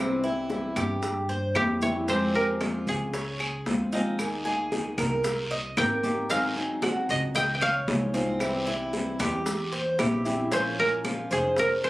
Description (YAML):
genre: latin, Cuban son and guajira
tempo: 114 BPM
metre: 4/4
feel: straight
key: unclear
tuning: A4 = 440 Hz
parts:
  - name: koto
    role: melody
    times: 0.0-11.9 s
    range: G4 to G5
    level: -26 LUFS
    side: equal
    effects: none
  - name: flamenco guitar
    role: accompaniment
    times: 0.0-11.6 s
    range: C3 to Ab4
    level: -30 LUFS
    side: left 1 dB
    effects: none
  - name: Cuban tres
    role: arpeggios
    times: 0.0-11.9 s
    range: C4 to Eb5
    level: -31 LUFS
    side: right 1 dB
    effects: none
  - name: upright bass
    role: bass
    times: 0.0-11.9 s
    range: F1 to G2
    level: -35 LUFS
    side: equal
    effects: none
  - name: bongos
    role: percussion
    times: 0.2-11.8 s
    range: none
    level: -35 LUFS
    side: left 2 dB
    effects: none
  - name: congas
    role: percussion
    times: 0.2-11.9 s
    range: none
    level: -32 LUFS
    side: equal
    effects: none
  - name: maracas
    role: percussion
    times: 0.2-11.9 s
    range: none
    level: -43 LUFS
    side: right 1 dB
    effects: none
  - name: claves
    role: percussion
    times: 0.8-11.9 s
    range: none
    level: -36 LUFS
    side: right 1 dB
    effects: none
  - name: guiro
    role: percussion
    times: 2.1-11.9 s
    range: none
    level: -38 LUFS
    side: right 1 dB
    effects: none
room: moderate studio ambience, RT60 0.5 s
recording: recorded on a phone in the room, club reverb, compression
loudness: -24 LUFS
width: side -18 dB against mid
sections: 0.0-10.5 A section; 10.5-11.9 B section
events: none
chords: 0.0 C; 2.1 Fmadd9; 3.1 Dbmaj7; 4.2 Ebsus4; 5.2 Cm7; 6.3 Ab7; 7.4 Dbadd9; 8.4 C; 10.5 Bbm